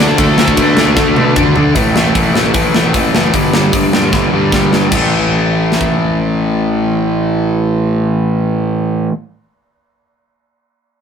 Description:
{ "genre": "punk rock", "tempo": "152 BPM", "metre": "4/4", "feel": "straight", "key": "unclear", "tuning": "A4 = 440 Hz", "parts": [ { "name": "biting lead guitar", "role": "melody", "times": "0.0-1.3 s", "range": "A3 to D5", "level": "-17 LUFS", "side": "left 1 dB", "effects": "overdrive" }, { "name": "crunchy overdriven guitar", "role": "riff", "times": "0.0-9.1 s", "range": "G2 to D4", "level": "-16 LUFS", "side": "left 5 dB", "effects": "none" }, { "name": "overdriven electric guitar", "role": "riff", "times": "0.0-1.6 s", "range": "D3 to F#4", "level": "-19 LUFS", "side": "left 3 dB", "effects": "none" }, { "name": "sludgy distorted guitar", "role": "riff", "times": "0.0-9.1 s", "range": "G2 to D4", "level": "-16 LUFS", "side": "right 5 dB", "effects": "overdrive" }, { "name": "fuzz picked electric bass", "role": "bass", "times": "0.0-9.1 s", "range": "F#1 to D3", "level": "-18 LUFS", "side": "equal", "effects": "overdrive" }, { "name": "tight metal drum kit", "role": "drums", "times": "0.2-5.9 s", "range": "crash cymbal, hi-hat, kick drum, ride cymbal, snare drum, toms", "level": "-15 LUFS", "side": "equal", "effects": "none" } ], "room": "light reverb", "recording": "rough rehearsal-room recording", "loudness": "-10 LUFS", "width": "side -7 dB against mid", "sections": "0.0-1.8 A section; 1.8-4.9 B section; 4.9-8.1 C section", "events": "drum fill 1.0-1.8, 4.1-4.9", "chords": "0.0 D; 1.8 A5; 3.3 G5; 4.9 A5", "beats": "| 0.18 0.57 0.97 1.36 | 1.76 2.15 2.55 2.94 | 3.34 3.73 4.13 4.52 | 4.92 5.32 5.71 6.11 | 6.50 6.90 7.29 7.69" }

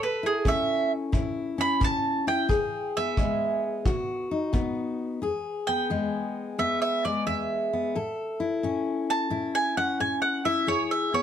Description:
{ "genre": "acoustic country blues, solo or duo", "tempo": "88 BPM", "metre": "4/4", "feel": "swing 67% on 8ths", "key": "E major", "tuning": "A4 = 442 Hz", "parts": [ { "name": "mandolin", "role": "melody", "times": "0.0-11.2 s", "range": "G#4 to B5", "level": "-26 LUFS", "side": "right 4 dB", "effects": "none" }, { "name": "fingerpicked steel-string acoustic guitar", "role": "accompaniment", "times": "0.0-11.2 s", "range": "E2 to A4", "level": "-28 LUFS", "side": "left 4 dB", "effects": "none" }, { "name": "kick drum", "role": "drums", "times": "0.5-4.8 s", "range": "none", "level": "-28 LUFS", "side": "equal", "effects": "none" } ], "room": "light reverb", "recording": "none", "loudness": "-24 LUFS", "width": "side -9 dB against mid", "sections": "0.0-5.2 A section; 5.2-11.2 A section", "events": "mandolin solo 0.0-5.2, 5.2-11.2", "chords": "0.0 A; 2.5 E; 3.9 B; 5.2 E; 8.0 A; 10.7 E", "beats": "0.45 1.14 1.82 | 2.50 3.18 3.86 4.54 | 5.22 5.91 6.59 7.27 | 7.95 8.63 9.31 9.99 | 10.68" }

